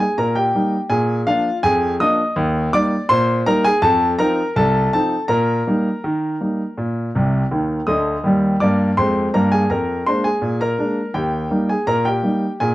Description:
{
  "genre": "ragtime piano",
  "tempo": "82 BPM",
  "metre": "2/4",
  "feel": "straight",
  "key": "Eb major",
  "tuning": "A4 = 440 Hz",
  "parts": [
    { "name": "warm grand piano", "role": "solo", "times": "0.0-12.7 s", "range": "C2 to Eb6", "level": "-16 LUFS", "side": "equal", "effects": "none" }
  ],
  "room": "light reverb",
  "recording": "dark, warm production",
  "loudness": "-16 LUFS",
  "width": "side -16 dB against mid",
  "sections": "0.0-12.7 A section",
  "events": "grand piano fill 7.1-8.2",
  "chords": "0.0 Eb; 0.9 Bb7; 2.4 Eb; 3.8 F7; 5.3 Eb/Bb; 6.8 Bb; 8.2 Eb; 9.7 Bb7/F; 11.2 Eb"
}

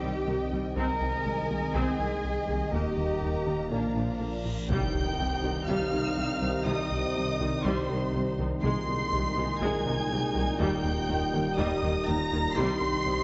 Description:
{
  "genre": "cinematic, hybrid orchestral and electronic film score",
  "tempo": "122 BPM",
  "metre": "4/4",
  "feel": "straight",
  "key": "C minor",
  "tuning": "A4 = 435 Hz",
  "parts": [
    { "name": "warm symphonic violin section", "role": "melody", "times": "0.0-13.2 s", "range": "G5 to C7", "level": "-40 LUFS", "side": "equal", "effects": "none" },
    { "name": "warm symphonic violin section", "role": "second line", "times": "0.0-13.2 s", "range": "C5 to C6", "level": "-38 LUFS", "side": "equal", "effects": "none" },
    { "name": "rich symphonic viola section", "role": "accompaniment", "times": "0.0-13.2 s", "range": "C3 to Eb4", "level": "-37 LUFS", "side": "equal", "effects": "none" },
    { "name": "bright trombone section", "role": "sustained chords", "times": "0.0-13.2 s", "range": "Bb2 to Bb3", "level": "-41 LUFS", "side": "equal", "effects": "none" },
    { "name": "dark analog pad", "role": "sustained chords", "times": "0.0-13.2 s", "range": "Eb3 to Eb5", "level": "-38 LUFS", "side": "equal", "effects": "chorus" },
    { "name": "plucky analog bass", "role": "riff", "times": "0.0-13.2 s", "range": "C2 to Eb3", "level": "-37 LUFS", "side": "equal", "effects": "none" },
    { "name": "rich symphonic cello section", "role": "bass", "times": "0.0-13.1 s", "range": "C3 to Bb4", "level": "-38 LUFS", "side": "equal", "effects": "none" },
    { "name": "rich symphonic double bass section", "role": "bass", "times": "0.0-13.1 s", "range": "Bb1 to Eb2", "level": "-40 LUFS", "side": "equal", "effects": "none" },
    { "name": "swelling detuned saw bass", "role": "bass", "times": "0.0-13.2 s", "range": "Eb1 to C2", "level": "-40 LUFS", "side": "equal", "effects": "none" },
    { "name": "reverse cymbal and impact", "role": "sound effects", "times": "4.4-6.7 s", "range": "none", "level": "-41 LUFS", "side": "equal", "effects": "none" },
    { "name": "dark French horn section", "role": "sustained chords", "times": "4.7-13.2 s", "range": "G3 to Eb4", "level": "-39 LUFS", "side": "equal", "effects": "none" }
  ],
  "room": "wet concert hall reverb, RT60 1.7 s",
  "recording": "nothing above 7.7 kHz",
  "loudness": "-29 LUFS",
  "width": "mono",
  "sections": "0.0-4.7 A section; 4.7-13.2 A section",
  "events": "reverse cymbal 4.4; impact 4.7-6.7",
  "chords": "0.0 Cm; 0.8 Abadd9/C; 2.7 Eb; 3.7 Bb; 4.7 Cm; 8.6 Abadd9/C; 10.6 Eb; 12.6 Cm"
}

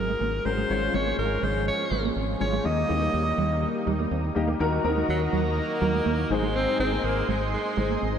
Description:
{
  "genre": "pop",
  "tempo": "123 BPM",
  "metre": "4/4",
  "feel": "straight",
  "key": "unclear",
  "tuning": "A4 = 441 Hz",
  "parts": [
    { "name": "bright alto saxophone", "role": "melody", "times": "0.0-8.2 s", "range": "Gb3 to Eb5", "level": "-29 LUFS", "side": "equal", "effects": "shimmer reverb" },
    { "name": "warm grand piano", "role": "accompaniment", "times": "0.0-8.2 s", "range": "Ab2 to Eb5", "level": "-28 LUFS", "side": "left 3 dB", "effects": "ensemble chorus, shimmer reverb" },
    { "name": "mellow electric guitar", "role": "riff", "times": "0.0-8.1 s", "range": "Gb3 to C4", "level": "-32 LUFS", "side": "right 6 dB", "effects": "ensemble chorus, shimmer reverb, ping-pong delay" },
    { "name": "deep dub fingered electric bass", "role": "bass", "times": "0.0-8.2 s", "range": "Ab1 to Eb2", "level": "-29 LUFS", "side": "equal", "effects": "none" },
    { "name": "lush unison pad", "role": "sustained chords", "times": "0.7-8.2 s", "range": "F3 to C6", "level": "-32 LUFS", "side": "right 1 dB", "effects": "chorus, shimmer reverb" }
  ],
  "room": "wet cathedral reverb, RT60 4.9 s",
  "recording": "dreamy mix soaked in reverb",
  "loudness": "-23 LUFS",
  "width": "side -8 dB against mid",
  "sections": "0.0-4.6 A section; 4.6-8.2 B section",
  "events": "none",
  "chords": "0.0 Gbadd9/Ab; 0.7 Db/Ab; 2.7 Eb; 4.6 Ebm; 6.3 Ab"
}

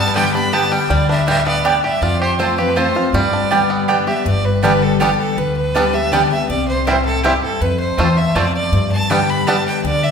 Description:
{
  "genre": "bluegrass",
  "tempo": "161 BPM",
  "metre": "3/4",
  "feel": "straight",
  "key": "G mixolydian",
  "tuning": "A4 = 443 Hz",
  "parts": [
    { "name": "clear fiddle", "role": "melody", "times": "0.0-10.1 s", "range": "G4 to B5", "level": "-20 LUFS", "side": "right 2 dB", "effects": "none" },
    { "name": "picked steel-string acoustic guitar", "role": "accompaniment", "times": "0.0-10.1 s", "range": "E2 to G4", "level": "-20 LUFS", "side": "left 5 dB", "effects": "none" },
    { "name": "bluegrass banjo", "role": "arpeggios", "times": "0.0-9.6 s", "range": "D3 to G4", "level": "-21 LUFS", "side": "right 1 dB", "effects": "none" },
    { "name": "upright bass", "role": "bass", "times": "0.0-10.1 s", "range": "G1 to G2", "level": "-22 LUFS", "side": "equal", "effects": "none" },
    { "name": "mandolin", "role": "stabs", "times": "0.2-9.6 s", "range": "B3 to A5", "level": "-21 LUFS", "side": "right 4 dB", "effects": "none" }
  ],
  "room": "wet recital hall reverb, RT60 1.6 s",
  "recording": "recorded in a church or concert hall",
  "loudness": "-14 LUFS",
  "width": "side -6 dB against mid",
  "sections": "0.0-4.3 A section; 4.3-10.1 A section",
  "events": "none",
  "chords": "0.0 G; 2.0 F; 3.1 G; 6.5 C; 7.6 F; 8.7 G"
}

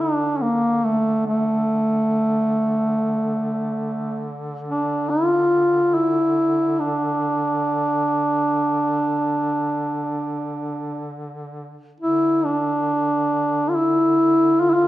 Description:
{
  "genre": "caucasian folk, Caucasian lament",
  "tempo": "free time",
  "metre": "none",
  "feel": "none",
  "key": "D minor",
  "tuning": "A4 = 440 Hz",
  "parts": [
    { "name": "dark duduk", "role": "melody", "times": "0.0-14.9 s", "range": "A3 to F4", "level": "-18 LUFS", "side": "equal", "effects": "none" },
    { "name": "mellow duduk", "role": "drone", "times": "0.0-14.9 s", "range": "D3", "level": "-31 LUFS", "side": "equal", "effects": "none" }
  ],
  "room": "moderate recital hall reverb, RT60 1.6 s",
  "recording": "minimal, uncompressed stereo recording",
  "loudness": "-18 LUFS",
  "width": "side -14 dB against mid",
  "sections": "0.0-12.0 A section; 12.0-14.9 B section",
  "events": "none",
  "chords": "none"
}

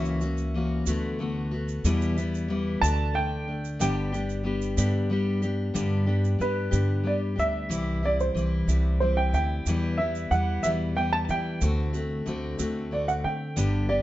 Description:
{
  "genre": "acoustic folk duo or small band",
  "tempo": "61 BPM (dotted quarters)",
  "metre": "6/8",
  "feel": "straight",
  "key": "G major",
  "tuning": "A4 = 440 Hz",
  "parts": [
    { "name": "warm upright piano", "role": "melody", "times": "0.0-14.0 s", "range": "B4 to A5", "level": "-28 LUFS", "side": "right 2 dB", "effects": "slapback echo" },
    { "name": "picked steel-string acoustic guitar", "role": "accompaniment", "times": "0.0-14.0 s", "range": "E2 to G4", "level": "-28 LUFS", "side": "left 2 dB", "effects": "none" },
    { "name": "upright bass", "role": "bass", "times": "0.0-14.0 s", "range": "G1 to E3", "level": "-28 LUFS", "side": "equal", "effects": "none" },
    { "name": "egg shaker", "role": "percussion", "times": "0.1-13.7 s", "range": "none", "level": "-39 LUFS", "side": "right 10 dB", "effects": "none" }
  ],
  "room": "light reverb",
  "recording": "dark, warm production, nothing above 7.7 kHz",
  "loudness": "-24 LUFS",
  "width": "side -15 dB against mid",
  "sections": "0.0-5.8 A section; 5.8-14.0 B section",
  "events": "upright piano solo 5.8-14.0",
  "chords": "0.0 F#7/C#; 0.9 Bm7/D; 1.8 Em; 2.8 D; 3.8 G; 7.7 C; 9.7 Em; 11.6 D7"
}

